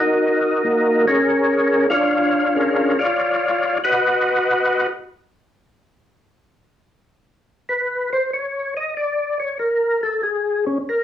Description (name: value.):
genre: jazz.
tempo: 94 BPM.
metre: 4/4.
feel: swing 69% on 8ths.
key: unclear.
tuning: A4 = 440 Hz.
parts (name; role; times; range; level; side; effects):
percussive tonewheel organ; solo; 0.0-11.0 s; Bb3 to F#5; -17 LUFS; left 1 dB; slow rotary speaker, overdrive, chorus vibrato, cassette tape.
room: moderate studio reverb, RT60 0.6 s.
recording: home recording on cassette, studio reverb.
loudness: -17 LUFS.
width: side -10 dB against mid.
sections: 0.0-11.0 A section.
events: tonewheel organ solo 0.0-11.0.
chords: 0.0 Ebm7; 1.3 Bb7#9; 3.8 B/F#; 6.4 N.C..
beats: 0.61 | 1.25 1.90 2.54 3.18 | 3.82 4.46 5.10 5.74 | 6.38 7.01 7.66 8.29 | 8.93 9.57 10.21 10.85.